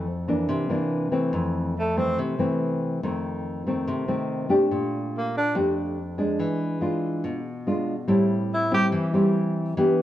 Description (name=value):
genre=bossa nova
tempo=142 BPM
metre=4/4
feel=straight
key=F major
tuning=A4 = 440 Hz
part: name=breathy tenor saxophone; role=melody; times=0.0-2.2, 5.2-5.6, 8.5-8.9 s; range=A3 to G4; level=-26 LUFS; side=right 1 dB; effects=none
part: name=nylon-string guitar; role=accompaniment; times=0.0-10.0 s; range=F2 to G4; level=-23 LUFS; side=equal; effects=none
room=light reverb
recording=worn, warbling old tape, cassette tape, warbly pitch drift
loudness=-22 LUFS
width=side -13 dB against mid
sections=0.0-1.3 A section; 1.3-10.0 A section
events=tenor saxophone solo 1.3-10.0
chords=0.5 C9; 1.3 Fmaj7; 3.0 F7; 4.7 Bb6; 6.4 E7b9; 8.1 Am7